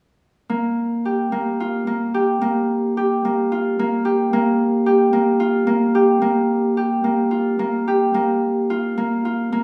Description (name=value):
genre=contemporary instrumental, contemporary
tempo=219 BPM (eighths)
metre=7/8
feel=straight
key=unclear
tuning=A4 = 440 Hz
part: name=Celtic harp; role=solo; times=0.5-9.6 s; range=Bb3 to G4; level=-19 LUFS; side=equal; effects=none
room=moderate concert hall reverb, RT60 1.8 s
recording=studio reverb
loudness=-19 LUFS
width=mono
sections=0.5-9.6 A section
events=none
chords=0.5 Bb5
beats=| 0.49 0.77 1.04 1.32 1.59 1.87 2.15 | 2.42 2.69 2.97 3.24 3.51 3.78 4.05 | 4.32 4.59 4.86 5.13 5.40 5.67 5.95 | 6.22 6.50 6.77 7.04 7.32 7.59 7.87 | 8.15 8.43 8.70 8.98 9.25 9.52